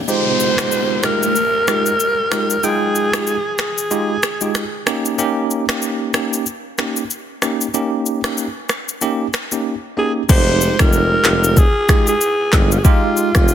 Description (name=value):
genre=afrobeats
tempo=94 BPM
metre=4/4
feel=swing 58% on 16ths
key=F minor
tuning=A4 = 439 Hz
part: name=breathy alto saxophone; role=melody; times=0.1-4.8, 10.0-13.5 s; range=F4 to C5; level=-18 LUFS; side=equal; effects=digital delay
part: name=barky tine electric piano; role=accompaniment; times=0.1-13.5 s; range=Ab3 to G5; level=-20 LUFS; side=right 2 dB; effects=fast stereo tremolo
part: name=afro-pop drum kit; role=drums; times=0.1-13.5 s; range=crash cymbal, finger snaps, handclaps, kick drum, rim click, shaker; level=-17 LUFS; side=left 1 dB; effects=soft clipping on snare
part: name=downlifter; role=sound effects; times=0.1-5.2 s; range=none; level=-24 LUFS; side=left 1 dB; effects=none
part: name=warm tuba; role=bass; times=10.3-13.5 s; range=F1 to G1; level=-18 LUFS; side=equal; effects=none
room=light reverb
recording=dense, heavily limited modern master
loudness=-15 LUFS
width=side -10 dB against mid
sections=0.1-10.3 A section; 10.3-13.5 B section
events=none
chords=0.1 Fm9; 4.9 Eb7; 10.3 Fm9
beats=| 0.08 0.72 1.36 2.00 | 2.63 3.27 3.91 4.55 | 5.19 5.83 6.46 7.10 | 7.74 8.38 9.02 9.66 | 10.29 10.93 11.57 12.21 | 12.85 13.48